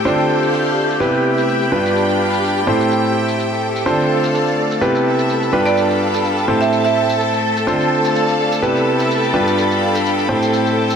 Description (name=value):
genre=piano house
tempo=126 BPM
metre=4/4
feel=swing 54% on 16ths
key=D dorian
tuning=A4 = 440 Hz
part: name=string machine, violins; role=sustained chords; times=0.0-11.0 s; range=G4 to A5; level=-21 LUFS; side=left 1 dB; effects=ensemble chorus
part: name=clear concert grand piano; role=riff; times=0.0-11.0 s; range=G2 to C5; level=-16 LUFS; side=right 1 dB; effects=dub echo
part: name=rich studio string section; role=texture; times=0.0-11.0 s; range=A3 to B5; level=-22 LUFS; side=left 2 dB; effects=none
part: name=shaker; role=drums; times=0.1-11.0 s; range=none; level=-33 LUFS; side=equal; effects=low-pass filter on hats, low-pass filter on perc, low-pass filter on room
part: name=marimba with hard mallets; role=melody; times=5.7-7.0 s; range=D5 to E5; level=-21 LUFS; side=right 8 dB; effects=dub echo
room=light reverb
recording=none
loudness=-14 LUFS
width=side -7 dB against mid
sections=0.0-11.0 A section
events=filter sweep on string machine 0.0-11.0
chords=0.1 Dm7; 1.0 Cmaj7; 1.7 G7; 2.7 Am7; 3.9 Dm7; 4.8 Cmaj7; 5.5 G7; 6.5 Am7; 7.7 Dm7; 8.6 Cmaj7; 9.3 G7; 10.3 Am7